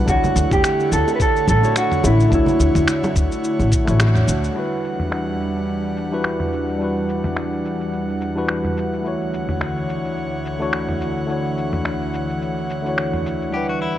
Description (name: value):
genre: sunset chillout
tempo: 107 BPM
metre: 4/4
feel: swing 56% on 16ths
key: unclear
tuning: A4 = 440 Hz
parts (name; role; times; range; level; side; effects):
- tine electric piano; accompaniment; 0.0-14.0 s; G3 to F#5; -25 LUFS; equal; auto-pan, tape echo
- airy breathy pad; sustained chords; 0.0-14.0 s; D2 to F#5; -25 LUFS; equal; chorus
- mellow electric guitar; melody; 0.1-4.0 s; E4 to B4; -19 LUFS; right 1 dB; tape echo
- upright bass; bass; 0.1-4.5 s; A1 to D2; -18 LUFS; equal; none
- dusty soul sampler-style drum kit; drums; 0.1-13.9 s; cabasa, crash cymbal, finger snaps, toms; -25 LUFS; equal; low-pass filter on perc, low-pass filter on toms, low-pass filter on snare, low-pass filter on cymbals
- electronic kick drum; drums; 0.1-3.8 s; none; -21 LUFS; equal; none
- bongos and congas; percussion; 0.1-4.1 s; none; -26 LUFS; right 1 dB; none
- clean electric guitar; arpeggios; 13.5-14.0 s; E4 to G4; -24 LUFS; left 4 dB; vintage 12-bit sampler grit
room: light reverb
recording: dry, gritty hardware recording, cassette tape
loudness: -18 LUFS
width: side -12 dB against mid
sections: 0.0-4.6 A section; 4.6-14.0 B section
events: band accent 4.0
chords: 0.1 Dmaj9; 4.6 Em9; 9.0 Dmaj9